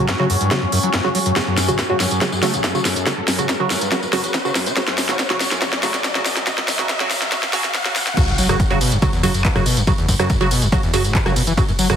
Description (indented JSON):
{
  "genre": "driving peak-time techno",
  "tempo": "141 BPM",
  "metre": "4/4",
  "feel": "straight",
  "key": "unclear",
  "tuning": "A4 = 440 Hz",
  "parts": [
    { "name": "screaming distorted acid line", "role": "riff", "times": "0.0-12.0 s", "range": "F#1 to A3", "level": "-23 LUFS", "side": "equal", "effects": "distortion, analog chorus, sidechain pumping, ping-pong delay" },
    { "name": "wavetable chord stab", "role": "stabs", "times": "0.0-12.0 s", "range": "C#3 to F#4", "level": "-22 LUFS", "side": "right 2 dB", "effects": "phaser, sidechain pumping, ping-pong delay" },
    { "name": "overtone-sweeping drone", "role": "drone", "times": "0.0-8.2 s", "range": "F#3 to C#4", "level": "-28 LUFS", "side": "left 1 dB", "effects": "chorus, built-in reverb, sidechain pumping" },
    { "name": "riser and sub drop", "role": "sound effects", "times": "0.2-9.9 s", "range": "none", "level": "-27 LUFS", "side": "equal", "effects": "none" },
    { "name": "electronic kick drum", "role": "drums", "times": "0.1-11.7 s", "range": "none", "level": "-21 LUFS", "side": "equal", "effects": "high-pass filter on kick, high-pass filter on room" },
    { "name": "techno drum kit", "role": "drums", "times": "0.1-12.0 s", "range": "crash cymbal, handclaps, hi-hat, ride cymbal, rim click, snare drum, tambourine", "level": "-21 LUFS", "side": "equal", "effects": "none" },
    { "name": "saturated sub bass", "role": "bass", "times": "8.3-12.0 s", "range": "F#1", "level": "-25 LUFS", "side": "equal", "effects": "overdrive, sidechain pumping, low-pass filter" }
  ],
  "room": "moderate plate reverb, RT60 1.4 s, digital ambience",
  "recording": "heavily compressed radio sound, multiband compression, high-pass filter",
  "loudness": "-16 LUFS",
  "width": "side -8 dB against mid",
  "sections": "0.0-8.2 A section; 8.2-12.0 B section",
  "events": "build-up 0.0-8.2; drum fill 0.0-8.2; filter sweep on acid bass 0.0-8.2; filter sweep on synth stab 0.0-8.2; filter sweep 0.0-8.2; riser 0.2-8.2; drop 8.2-12.0; impact 8.2-9.9",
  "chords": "0.0 F#5",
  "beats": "0.09 0.51 0.94 | 1.36 1.79 2.21 2.64 | 3.06 3.49 3.92 4.34 | 4.77 5.19 5.62 6.04 | 6.47 6.89 7.32 7.75 | 8.17 8.60 9.02 9.45 | 9.87 10.30 10.72 11.15 | 11.57"
}